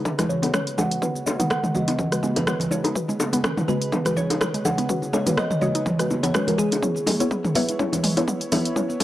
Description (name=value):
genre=afro house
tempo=124 BPM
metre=4/4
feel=swing 55% on 16ths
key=unclear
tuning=A4 = 441 Hz
part: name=kalimba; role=melody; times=0.0-8.7 s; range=G#4 to F#5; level=-30 LUFS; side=right 1 dB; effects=low-pass filter, tape echo
part: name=warm analog pad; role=sustained chords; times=0.0-9.0 s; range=C#3 to C#5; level=-33 LUFS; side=equal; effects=chorus, sidechain pumping
part: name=mallet-like synth pluck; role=arpeggios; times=0.0-9.0 s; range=G#3 to C#5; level=-29 LUFS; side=equal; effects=chorus, sidechain pumping, tape echo
part: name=deep mellow chord stab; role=stabs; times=0.0-8.9 s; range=G#3 to E5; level=-27 LUFS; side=left 2 dB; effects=chorus, sidechain pumping, tape echo
part: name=deep house drum kit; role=drums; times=0.1-9.0 s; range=cabasa, hi-hat, rim click, toms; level=-26 LUFS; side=equal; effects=none
part: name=electronic kick drum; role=drums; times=0.1-8.9 s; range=none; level=-34 LUFS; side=equal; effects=none
part: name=bongos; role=percussion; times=0.1-9.0 s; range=none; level=-28 LUFS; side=left 2 dB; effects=none
part: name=congas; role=percussion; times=0.1-9.0 s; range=none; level=-29 LUFS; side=right 2 dB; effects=none
room=light reverb, digital ambience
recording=dry, gritty hardware recording, transformer saturation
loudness=-20 LUFS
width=side -14 dB against mid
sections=0.0-9.0 A section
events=build-up 0.0-9.0; drum fill 0.0-9.0; filter sweep on synth pluck 0.0-9.0; filter sweep on synth stab 0.0-9.0; filter sweep on kalimba 0.0-9.0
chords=0.0 G#m7/C#; 6.8 C#m7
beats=0.06 0.54 | 1.02 1.51 1.99 2.48 | 2.96 3.44 3.93 4.41 | 4.89 5.38 5.86 6.35 | 6.83 7.31 7.80 8.28 | 8.77